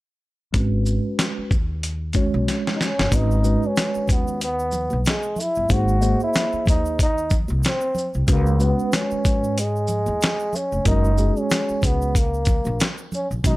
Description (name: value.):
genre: hip hop, jazz-hop.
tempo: 93 BPM.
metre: 4/4.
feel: swing 58% on 16ths.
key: G# minor.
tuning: A4 = 442 Hz.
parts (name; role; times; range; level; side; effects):
mellow tine electric piano; accompaniment; 0.5-13.6 s; D#3 to D#5; -25 LUFS; equal; medium stereo tremolo, low-pass filter.
upright bass; bass; 0.5-13.6 s; E#1 to G#2; -22 LUFS; equal; none.
dusty soul sampler-style drum kit; drums; 0.5-13.6 s; hi-hat, kick drum, shaker, snare drum; -21 LUFS; equal; none.
trombone with cup mute; melody; 2.8-13.6 s; G#3 to F#4; -24 LUFS; equal; none.
tube shaker and congas; percussion; 3.1-13.6 s; none; -34 LUFS; right 2 dB; none.
room: small room ambience.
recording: dry, gritty hardware recording, transformer saturation.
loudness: -19 LUFS.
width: side -19 dB against mid.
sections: 0.5-3.1 A section; 3.1-13.6 B section.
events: filter sweep on tine electric piano 0.5-3.1; drum fill 2.5-3.1.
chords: 0.5 G#m7; 5.7 G#; 8.3 C#7(no3); 10.9 F#.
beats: | 0.54 1.18 1.83 2.47 | 3.12 3.76 4.41 5.05 | 5.70 6.34 6.99 7.63 | 8.28 8.93 9.57 10.22 | 10.86 11.51 12.15 12.80 | 13.44.